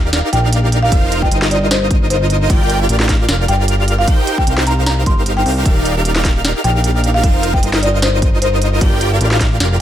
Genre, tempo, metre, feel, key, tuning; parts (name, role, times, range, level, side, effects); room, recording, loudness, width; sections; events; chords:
future bass; 152 BPM; 4/4; swing 54% on 16ths, half-time; A4 = 439 Hz
airy dreamy lead; arpeggios; 0.0-9.8 s; Eb5 to G5; -25 LUFS; equal; chorus, phaser, sidechain pumping, digital delay
supersaw chords; riff; 0.0-9.8 s; Eb4 to G5; -19 LUFS; right 2 dB; sidechain pumping, digital delay
fat analog bass; bass; 0.0-9.8 s; Eb1 to C2; -16 LUFS; equal; sidechain pumping
trap drum kit; drums; 0.1-9.7 s; hi-hat, snare drum; -19 LUFS; right 1 dB
buzzing marimba with medium mallets; melody; 0.3-8.8 s; C5 to C6; -20 LUFS; left 1 dB; sidechain pumping, digital delay
electronic kick drum; drums; 0.9-9.5 s; -14 LUFS; equal
little or no reverb; -12 LUFS; side -11 dB against mid
0.0-9.8 A section
0.0 Ebmaj9; 0.9 F7sus4; 2.5 Gm7; 4.1 Cm7; 5.7 Ebmaj9; 7.2 F7sus4; 8.8 Gm7